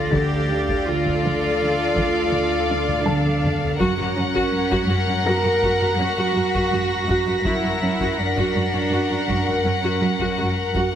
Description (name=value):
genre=cinematic, suspense film score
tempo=82 BPM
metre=5/4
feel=straight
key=unclear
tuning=A4 = 440 Hz
part: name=dark chamber violin section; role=melody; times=0.0-11.0 s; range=F5 to F#5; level=-27 LUFS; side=left 5 dB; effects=none
part: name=warm studio violin section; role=second line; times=0.0-11.0 s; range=A#4 to D5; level=-28 LUFS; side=left 1 dB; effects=none
part: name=warm chamber viola section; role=accompaniment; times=0.0-11.0 s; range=C#4 to A4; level=-26 LUFS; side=equal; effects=none
part: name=clear chamber double bass section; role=bass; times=0.0-11.0 s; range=D2 to F#2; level=-28 LUFS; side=right 2 dB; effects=none
part: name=warm chamber cello section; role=bass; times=0.0-10.4 s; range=C#4 to A#4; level=-25 LUFS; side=right 3 dB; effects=none
part: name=dark studio violin section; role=texture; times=0.0-10.7 s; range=A6 to B6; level=-31 LUFS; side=left 3 dB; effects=none
part: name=dark chamber cello section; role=riff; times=0.1-11.0 s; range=F#2 to D4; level=-26 LUFS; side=equal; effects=none
part: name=taiko ensemble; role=drums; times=0.1-11.0 s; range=none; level=-32 LUFS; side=left 1 dB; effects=none
part: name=dark baby grand piano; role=texture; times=3.1-11.0 s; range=A#4 to A#6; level=-32 LUFS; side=left 3 dB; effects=none
room=wet scoring stage reverb, RT60 1.7 s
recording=heavily compressed radio sound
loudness=-18 LUFS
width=side -9 dB against mid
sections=0.0-11.0 A section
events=drum fill 2.9-3.8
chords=0.0 Dm; 3.8 F#